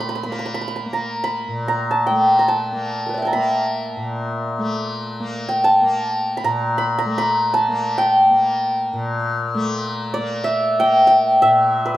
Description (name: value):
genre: indian classical, Hindustani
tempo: free time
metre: none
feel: none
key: Bb raga marwa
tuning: A4 = 440 Hz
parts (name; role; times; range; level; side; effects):
- santur; melody; 0.0-12.0 s; Bb4 to Cb6; -17 LUFS; equal; none
- tanpura; drone; 0.0-12.0 s; Bb2 to Bb3; -25 LUFS; left 2 dB; none
room: moderate large studio reverb, RT60 0.8 s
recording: band playing live in one room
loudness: -17 LUFS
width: side -14 dB against mid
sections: 0.0-12.0 A section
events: none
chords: none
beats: free time